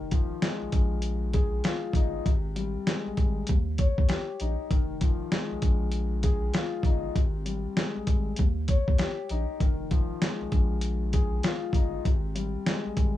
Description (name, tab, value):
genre	hip hop, boom-bap hip-hop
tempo	98 BPM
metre	4/4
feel	swing 60% on 16ths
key	F minor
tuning	A4 = 440 Hz
part	dark concert grand piano	accompaniment	0.0-13.2 s	C3 to Db5	-33 LUFS	left 6 dB	high-pass filter, low-pass filter
part	round analog bass	bass	0.0-13.2 s	F1 to Eb2	-30 LUFS	equal	none
part	dusty soul sampler-style drum kit	drums	0.1-13.1 s	hi-hat, kick drum, snare drum	-25 LUFS	equal	cassette tape
room	little or no reverb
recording	home recording on cassette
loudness	-25 LUFS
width	side -14 dB against mid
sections	0.0-13.2 A section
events	none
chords	0.0 Fm7; 2.3 Abmaj7; 3.5 Eb7; 4.7 Fm7; 7.2 Abmaj7; 8.4 Eb7; 9.6 Fm7; 12.1 Abmaj7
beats	0.42 1.03 1.65 | 2.26 2.87 3.48 4.09 | 4.71 5.32 5.93 6.54 | 7.16 7.77 8.38 8.99 | 9.61 10.22 10.83 11.44 | 12.05 12.67